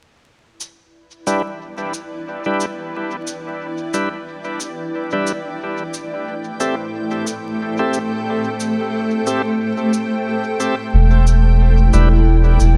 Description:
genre	ambient dub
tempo	90 BPM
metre	4/4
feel	swing 57% on 16ths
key	E minor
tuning	A4 = 441 Hz
part	granular cloud pad	sustained chords	1.2-12.8 s	A3 to G5	-24 LUFS	equal	built-in reverb
part	cabasa	drums	0.6-12.8 s	none	-33 LUFS	equal	dub echo
part	bright tonewheel organ	stabs	1.3-12.1 s	G3 to E5	-26 LUFS	equal	overdrive, slow rotary speaker, low-pass filter, dub echo
part	soft dub sub bass	bass	10.9-12.8 s	E1	-13 LUFS	equal	none
room	light reverb, digital ambience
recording	echo-heavy mix, vinyl crackle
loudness	-19 LUFS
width	mono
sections	0.3-12.8 A section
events	fade-in on ambient pad 0.3-12.8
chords	0.3 Em7; 5.6 Am7; 10.9 Em7

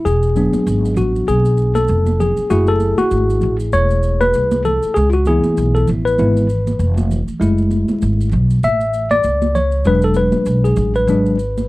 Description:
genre	hip hop, jazz-hop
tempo	98 BPM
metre	4/4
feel	swing 57% on 16ths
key	F# minor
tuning	A4 = 439 Hz
part	mellow tine electric piano	accompaniment	0.0-11.7 s	E3 to E5	-16 LUFS	left 1 dB	medium stereo tremolo
part	upright bass	bass	0.1-11.7 s	E1 to C#2	-17 LUFS	equal	none
part	maracas and congas	percussion	0.1-11.7 s	none	-25 LUFS	right 3 dB	none
room	little or no reverb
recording	dry, close 1970s-style studio recording, vinyl crackle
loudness	-13 LUFS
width	side -19 dB against mid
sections	0.0-11.7 A section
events	tine electric piano solo 0.0-11.7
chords	0.1 E7; 2.5 F#m7; 5.0 C#m7; 7.4 F#m7; 9.9 E7

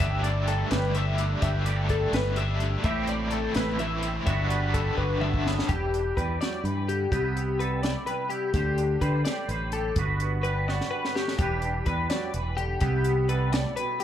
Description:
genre	math rock and midwest emo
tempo	84 BPM (dotted quarters)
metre	6/8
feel	straight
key	G major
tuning	A4 = 440 Hz
part	twangy electric guitar	accompaniment	0.0-14.0 s	G2 to C5	-32 LUFS	right 7 dB	ensemble chorus, slapback echo
part	twelve-string electric guitar	arpeggios	0.0-14.0 s	G4 to E5	-30 LUFS	left 5 dB	analog chorus
part	overdriven electric guitar	riff	0.0-5.7 s	G2 to G4	-31 LUFS	left 1 dB	tremolo, slapback echo
part	fingered electric bass	bass	0.0-13.6 s	E1 to D3	-28 LUFS	equal	none
part	compact cocktail drum kit	drums	0.0-14.0 s	hi-hat, kick drum, snare drum, toms	-30 LUFS	equal	none
room	small room ambience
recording	live gig heard through the venue's PA, club reverb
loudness	-24 LUFS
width	side -10 dB against mid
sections	0.0-5.7 A section; 5.7-14.0 B section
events	drum fill 5.0-5.7, 10.7-11.4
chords	0.0 Gsus2; 2.8 Am7; 4.3 Gmaj7; 5.7 Em7; 7.1 Cmaj7; 8.5 D7sus4; 10.0 Gmaj7; 11.4 Em7; 12.8 Cmaj7

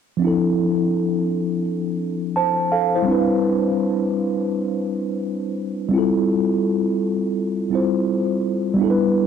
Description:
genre	hip hop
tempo	84 BPM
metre	4/4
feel	swing 65% on 16ths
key	D dorian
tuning	A4 = 440 Hz
part	mellow tine electric piano	solo	0.2-9.3 s	F3 to A5	-18 LUFS	equal	medium stereo tremolo, low-pass filter, diffuse ambient delay
room	wet plate reverb, RT60 2.5 s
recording	dreamy mix soaked in reverb, cassette tape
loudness	-18 LUFS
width	side -7 dB against mid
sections	0.2-9.3 A section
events	none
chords	0.2 Dm9; 3.1 Cmaj9; 5.9 Fmaj9

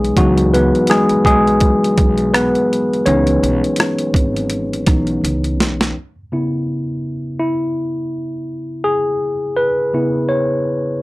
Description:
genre	lo-fi hip hop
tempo	83 BPM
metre	4/4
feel	swing 56% on 16ths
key	unclear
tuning	A4 = 437 Hz
part	tine electric piano	accompaniment	0.0-11.0 s	C#3 to C#5	-15 LUFS	left 1 dB	cassette tape, low-pass filter
part	upright bass	bass	0.0-5.9 s	G#1 to C#2	-21 LUFS	right 1 dB	none
part	boom bap sampler-style drum kit	drums	0.0-6.0 s	hi-hat, kick drum, rim click, snare drum	-17 LUFS	right 1 dB	none
room	light reverb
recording	dry, gritty hardware recording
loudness	-14 LUFS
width	side -20 dB against mid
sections	0.0-5.9 A section; 5.9-11.0 B section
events	tine electric piano solo 0.0-5.9, 5.9-11.0; drum fill 5.2-5.9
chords	0.0 C#m9; 5.9 C#m7

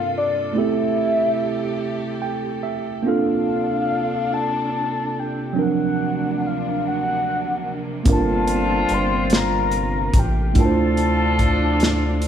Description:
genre	slow six-eight R&B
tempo	48 BPM (dotted quarters)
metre	6/8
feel	straight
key	unclear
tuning	A4 = 441 Hz
part	soft octave-layered synth lead	melody	0.0-12.2 s	D5 to C6	-24 LUFS	left 3 dB	chorus
part	tine electric piano	accompaniment	0.0-12.3 s	G2 to G5	-23 LUFS	right 4 dB	none
part	warm studio string section	sustained chords	0.0-12.3 s	D2 to A4	-29 LUFS	right 1 dB	none
part	clear horn section	stabs	8.1-12.3 s	C4 to A4	-25 LUFS	left 1 dB	none
part	rubbery square bass	bass	8.1-12.3 s	G1 to D2	-22 LUFS	equal	none
part	warm soul drum kit	drums	8.1-12.3 s	hi-hat, kick drum, snare drum	-19 LUFS	equal	none
room	moderate large studio reverb, RT60 1.0 s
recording	band playing live in one room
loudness	-18 LUFS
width	side -9 dB against mid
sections	0.0-12.3 A section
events	tine electric piano fill 1.8-3.1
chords	0.0 Gm11; 0.6 Am7; 3.1 Bbmaj9; 5.6 D7alt; 8.1 Gm11; 10.6 Dm7

